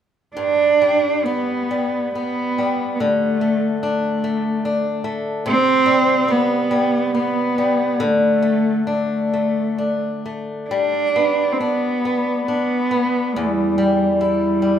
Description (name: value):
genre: celtic folk, Celtic slow air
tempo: 64-74 BPM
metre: 3/4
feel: rubato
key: G major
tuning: A4 = 441 Hz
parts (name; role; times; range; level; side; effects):
- dark cello; melody; 0.4-14.8 s; G3 to D4; -18 LUFS; right 1 dB; none
- picked swing-style acoustic guitar; accompaniment; 0.4-14.8 s; E2 to E4; -21 LUFS; left 2 dB; none
room: moderate large studio reverb, RT60 1.4 s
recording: band playing live in one room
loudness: -17 LUFS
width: side -9 dB against mid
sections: 0.4-14.8 A section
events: none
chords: 0.4 G; 3.0 D5; 5.5 C5; 8.0 D5; 10.7 G; 13.3 Em